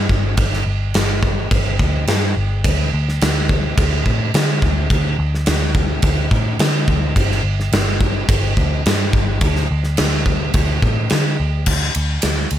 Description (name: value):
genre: rock, shoegaze and dream pop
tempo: 106 BPM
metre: 4/4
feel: straight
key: unclear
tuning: A4 = 440 Hz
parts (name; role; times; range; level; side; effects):
- vintage muted picked electric bass; bass; 0.0-12.6 s; G1 to D3; -18 LUFS; equal; none
- gated 80s drum kit; drums; 0.1-12.6 s; crash cymbal, kick drum, ride cymbal, snare drum; -18 LUFS; equal; none
room: little or no reverb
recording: none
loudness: -15 LUFS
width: side -11 dB against mid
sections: 0.0-11.7 A section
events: none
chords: none